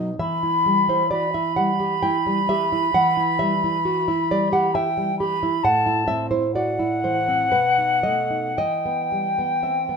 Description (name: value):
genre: romantic duo for flute and classical guitar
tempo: 55-69 BPM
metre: 3/4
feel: rubato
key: E minor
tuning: A4 = 440 Hz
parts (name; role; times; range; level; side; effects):
- nylon-string guitar; accompaniment; 0.0-10.0 s; A2 to G5; -22 LUFS; right 1 dB; none
- silver concert flute; melody; 0.2-10.0 s; F#5 to B5; -21 LUFS; left 1 dB; none
room: moderate studio reverb, RT60 0.8 s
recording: minimal, uncompressed stereo recording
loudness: -19 LUFS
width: side -6 dB against mid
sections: 0.0-10.0 A section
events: none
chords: 0.2 Em; 5.6 F#m7b5/A; 7.5 B7; 8.6 Em